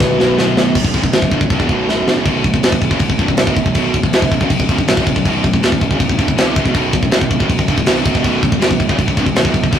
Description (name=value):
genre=heavy metal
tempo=160 BPM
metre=4/4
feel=straight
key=unclear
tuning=A4 = 440 Hz
part: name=biting overdriven guitar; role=riff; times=0.0-0.8, 8.2-9.8 s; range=B1 to C#3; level=-23 LUFS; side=left 1 dB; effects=none
part: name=heavy high-gain guitar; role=riff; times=0.0-9.8 s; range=B1 to D3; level=-21 LUFS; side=left 6 dB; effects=distortion
part: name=high-gain distorted guitar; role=riff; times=0.0-9.8 s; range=B1 to D3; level=-19 LUFS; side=right 3 dB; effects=distortion
part: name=fuzz picked electric bass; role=bass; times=0.0-9.8 s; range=B0 to G1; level=-24 LUFS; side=equal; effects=none
part: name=tight metal drum kit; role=drums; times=0.0-9.8 s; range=crash cymbal, kick drum, snare drum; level=-14 LUFS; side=equal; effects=none
room=moderate studio reverb, RT60 0.5 s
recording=rough rehearsal-room recording, warm saturation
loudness=-12 LUFS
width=side -9 dB against mid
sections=0.8-2.3 A section; 2.3-9.8 B section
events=drum fill 0.0-0.8, 1.9-2.3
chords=0.0 B5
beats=0.01 0.38 | 0.76 1.13 1.51 1.88 | 2.26 2.63 3.01 3.38 | 3.76 4.13 4.51 4.88 | 5.25 5.63 6.00 6.37 | 6.75 7.12 7.49 7.86 | 8.24 8.61 8.98 9.35 | 9.72